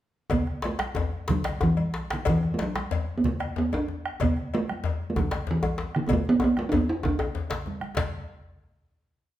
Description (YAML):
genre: west african traditional, West African drum ensemble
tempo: 125 BPM (dotted quarters)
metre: 12/8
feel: uneven beats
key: D major pentatonic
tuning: A4 = 439 Hz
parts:
  - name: talking drum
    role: melody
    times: 0.3-7.7 s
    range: D3 to E4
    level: -26 LUFS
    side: right 1 dB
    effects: none
  - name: bombo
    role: percussion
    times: 0.3-8.1 s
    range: none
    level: -33 LUFS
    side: right 1 dB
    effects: none
  - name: congas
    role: percussion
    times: 0.3-8.1 s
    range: none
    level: -35 LUFS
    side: right 3 dB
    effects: none
  - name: cowbell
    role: percussion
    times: 0.3-8.1 s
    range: none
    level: -37 LUFS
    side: left 6 dB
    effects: none
  - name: djembe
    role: percussion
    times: 0.3-8.1 s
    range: none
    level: -33 LUFS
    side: left 4 dB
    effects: none
  - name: djembe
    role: percussion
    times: 0.3-8.1 s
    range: none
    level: -32 LUFS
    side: left 2 dB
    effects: none
room: wet large studio reverb, RT60 1.1 s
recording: band playing live in one room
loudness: -24 LUFS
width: side -13 dB against mid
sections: 0.3-8.0 A section; 8.0-9.4 final hit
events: speeding up 0.3-9.4; drum fill 6.1-8.0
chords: none